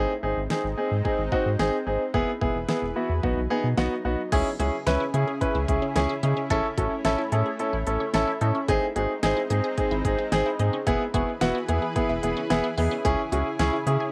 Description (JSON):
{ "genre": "synth-pop", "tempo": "110 BPM", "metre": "4/4", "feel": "straight", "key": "C# minor", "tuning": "A4 = 440 Hz", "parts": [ { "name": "clear baby grand piano", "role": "accompaniment", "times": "0.0-14.0 s", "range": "B3 to B4", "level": "-28 LUFS", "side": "equal", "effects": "cassette tape" }, { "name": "lush unison pad", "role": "sustained chords", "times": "0.0-14.1 s", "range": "C#3 to B4", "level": "-35 LUFS", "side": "equal", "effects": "chorus, cassette tape" }, { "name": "round analog bass", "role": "bass", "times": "0.0-14.0 s", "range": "E1 to C#3", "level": "-30 LUFS", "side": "equal", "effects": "none" }, { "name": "pop drum kit", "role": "drums", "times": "0.5-14.0 s", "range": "crash cymbal, hi-hat, kick drum, snare drum", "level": "-32 LUFS", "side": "equal", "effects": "cassette tape" }, { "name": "resonant blip pluck", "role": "arpeggios", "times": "4.3-14.1 s", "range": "C#4 to G#4", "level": "-38 LUFS", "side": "equal", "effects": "phaser, cassette tape, analog delay" } ], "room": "moderate booth ambience, RT60 0.2 s", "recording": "home recording on cassette", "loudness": "-25 LUFS", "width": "mono", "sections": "0.0-4.3 A section; 4.3-14.1 B section", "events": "none", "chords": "0.0 G#; 2.1 E; 3.2 B; 4.3 C#m; 6.5 A; 8.7 G#; 10.9 E; 13.0 C#m", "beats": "0.50 1.05 1.59 | 2.14 2.69 3.23 3.78 | 4.32 4.87 5.41 5.96 | 6.50 7.05 7.59 8.14 | 8.69 9.23 9.78 10.32 | 10.87 11.41 11.96 12.50 | 13.05 13.60" }